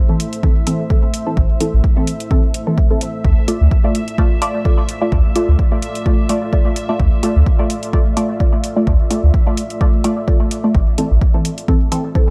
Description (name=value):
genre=dub techno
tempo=128 BPM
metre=4/4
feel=swing 55% on 16ths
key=unclear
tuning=A4 = 440 Hz
part: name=deep dark ambient pad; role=sustained chords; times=0.0-12.3 s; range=A3 to D5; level=-30 LUFS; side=equal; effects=chorus, built-in reverb, sidechain pumping
part: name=bubbling stepped-filter texture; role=texture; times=0.0-12.3 s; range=E5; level=-35 LUFS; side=equal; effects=chorus, built-in reverb, sidechain pumping
part: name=filtered dub chord stab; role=stabs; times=0.1-12.3 s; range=E3 to D5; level=-22 LUFS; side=equal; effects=chorus, phaser, sidechain pumping, dub echo
part: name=electronic hi-hat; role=drums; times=0.2-12.0 s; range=none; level=-29 LUFS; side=equal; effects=studio reverb
part: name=electronic kick drum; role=drums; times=0.4-12.3 s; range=none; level=-17 LUFS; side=equal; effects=studio reverb
part: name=warm sub bass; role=bass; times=1.4-11.2 s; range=A1 to D2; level=-14 LUFS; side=equal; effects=sidechain pumping
room=little or no reverb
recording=dark, warm production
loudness=-16 LUFS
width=mono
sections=0.0-12.3 A section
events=filter sweep on synth stab 0.0-12.3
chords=0.0 Am; 3.2 Dm; 10.7 Am